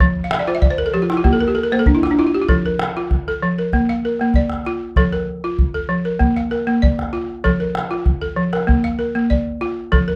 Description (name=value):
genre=west african traditional, West African string and xylophone music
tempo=97 BPM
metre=4/4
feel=straight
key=unclear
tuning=A4 = 440 Hz
part: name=balafon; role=arpeggios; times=0.0-10.2 s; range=F3 to F5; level=-20 LUFS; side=equal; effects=none
part: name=calabash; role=percussion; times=0.0-10.1 s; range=none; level=-22 LUFS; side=equal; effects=none
room=little or no reverb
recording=dry, close 1970s-style studio recording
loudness=-18 LUFS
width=mono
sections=0.0-10.2 A section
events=balafon fill 0.2-2.5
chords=0.0 N.C.; 1.2 Bb5; 2.5 F; 3.7 Bb; 5.0 F; 6.2 Bb; 7.4 F; 8.7 Bb